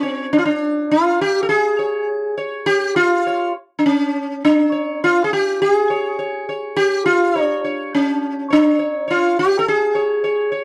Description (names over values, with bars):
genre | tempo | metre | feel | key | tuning
indian classical | 103 BPM | 7/4 | straight | unclear | A4 = 440 Hz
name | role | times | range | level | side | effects
sitar | solo | 0.0-10.6 s | Db4 to Db5 | -18 LUFS | equal | none
room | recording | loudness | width
little or no reverb | dry, close 1970s-style studio recording | -18 LUFS | mono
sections
0.0-9.7 A section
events
none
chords
none